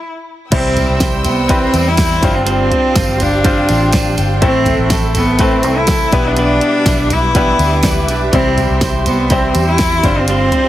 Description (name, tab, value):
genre	piano-driven pop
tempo	123 BPM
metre	4/4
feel	straight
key	unclear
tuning	A4 = 441 Hz
part	rich cello	melody	0.0-10.7 s	B3 to E4	-16 LUFS	equal	none
part	bright baby grand piano	accompaniment	0.5-10.7 s	G2 to C5	-19 LUFS	left 2 dB	none
part	warm studio string section	sustained chords	0.5-10.7 s	C4 to E6	-24 LUFS	equal	none
part	direct-recorded clean electric guitar	riff	0.5-10.7 s	A2 to C5	-21 LUFS	right 4 dB	phaser
part	vintage muted fingered electric bass	bass	0.5-10.5 s	G1 to E2	-18 LUFS	equal	none
part	pop drum kit	drums	0.5-10.6 s	crash cymbal, hi-hat, kick drum, snare drum, toms	-16 LUFS	equal	none
part	tambourine	percussion	0.8-10.4 s	none	-30 LUFS	right 4 dB	none
room	light reverb, small room ambience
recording	heavily compressed radio sound, multiband compression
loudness	-11 LUFS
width	side -13 dB against mid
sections	0.5-10.7 A section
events	stop 0.0-0.5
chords	0.0 N.C.; 0.5 C; 2.2 G7sus4; 4.4 Am; 6.1 Em7/B; 8.3 C; 10.0 G7sus4